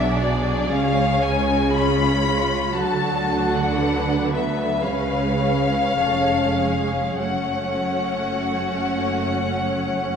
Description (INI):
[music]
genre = classical, slow romantic movement for string orchestra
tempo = 46-60 BPM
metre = 4/4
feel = rubato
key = F# minor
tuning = A4 = 440 Hz
[part]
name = warm studio violin section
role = melody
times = 0.0-10.2 s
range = D5 to B5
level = -24 LUFS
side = left 4 dB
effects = none
[part]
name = warm studio violin section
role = second line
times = 0.0-10.2 s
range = E#4 to D5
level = -27 LUFS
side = left 1 dB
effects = none
[part]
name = rich symphonic viola section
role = accompaniment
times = 0.0-10.2 s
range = F#3 to F#4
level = -24 LUFS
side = equal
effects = none
[part]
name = rich symphonic cello section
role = bass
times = 0.0-10.2 s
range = E#2 to D3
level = -27 LUFS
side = right 3 dB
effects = none
[part]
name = rich symphonic double bass section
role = bass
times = 0.0-10.2 s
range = E#1 to D2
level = -28 LUFS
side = right 4 dB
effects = none
[sound]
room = wet scoring stage reverb, RT60 1.8 s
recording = none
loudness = -19 LUFS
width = side -7 dB against mid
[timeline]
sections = 0.0-10.2 A section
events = none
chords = 0.0 G#dim/B; 0.7 C#; 2.8 D; 4.9 C#7; 7.2 F#m